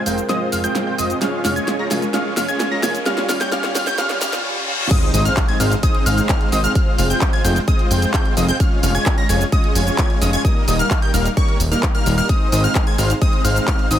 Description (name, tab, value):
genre	EDM, festival progressive house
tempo	130 BPM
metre	4/4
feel	straight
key	Ab major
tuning	A4 = 443 Hz
part	felt-muted upright piano	accompaniment	0.0-4.9 s	G3 to Bb4	-28 LUFS	right 3 dB	sidechain pumping, tape echo
part	plucky unison lead	arpeggios	0.0-14.0 s	Db6 to Bb6	-24 LUFS	left 1 dB	sidechain pumping, tape echo
part	dense compressed supersaw	riff	0.0-14.0 s	G3 to Bb5	-22 LUFS	equal	sidechain pumping, low-pass filter, tape echo
part	riser, reverse cymbal and impact	sound effects	1.2-6.8 s	none	-29 LUFS	left 1 dB	none
part	fat analog bass	bass	0.1-14.0 s	Eb1 to Ab1	-20 LUFS	equal	tube saturation, sidechain pumping
part	pop drum kit	drums	0.1-14.0 s	crash cymbal, handclaps, hi-hat, shaker, snare drum	-24 LUFS	equal	none
part	electronic kick drum	drums	4.9-13.8 s	none	-18 LUFS	equal	none
room	light reverb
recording	high-pass filter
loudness	-15 LUFS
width	side -11 dB against mid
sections	0.0-4.9 A section; 4.9-14.0 B section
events	build-up 0.0-4.9; drum fill 0.0-4.4; filter sweep on supersaw synth 0.0-4.9; filter sweep on digital synth lead 0.0-4.9; filter sweep 0.0-4.9; riser 1.2-4.9; reverse cymbal 4.0-4.9; drop 4.9-14.0; impact 4.9-6.8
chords	0.0 Fm; 1.2 Db/F; 3.1 Eb; 4.9 Ab; 6.8 Fm; 8.6 Db/F; 10.4 Eb; 12.3 Ab